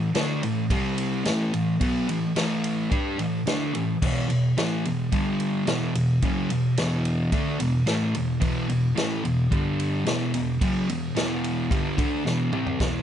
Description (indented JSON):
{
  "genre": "garage rock duo or trio",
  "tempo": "109 BPM",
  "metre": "4/4",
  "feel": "straight",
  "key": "E minor",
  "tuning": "A4 = 440 Hz",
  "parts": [
    { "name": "fuzz guitar", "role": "riff", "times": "0.0-13.0 s", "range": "E2 to G4", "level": "-23 LUFS", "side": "equal", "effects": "distortion" },
    { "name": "vintage drum kit", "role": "drums", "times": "0.1-12.9 s", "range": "crash cymbal, kick drum, ride cymbal, snare drum, toms", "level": "-28 LUFS", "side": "equal", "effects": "none" }
  ],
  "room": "moderate club reverb, RT60 0.5 s",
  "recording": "nothing above 10.5 kHz",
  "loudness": "-22 LUFS",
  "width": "side -10 dB against mid",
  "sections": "0.0-12.8 A section",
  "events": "drum fill 12.2-12.8",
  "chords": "0.0 A5; 0.7 C5; 1.3 A5; 4.0 E5; 5.1 G5; 5.7 E5; 9.5 G5; 10.1 Em"
}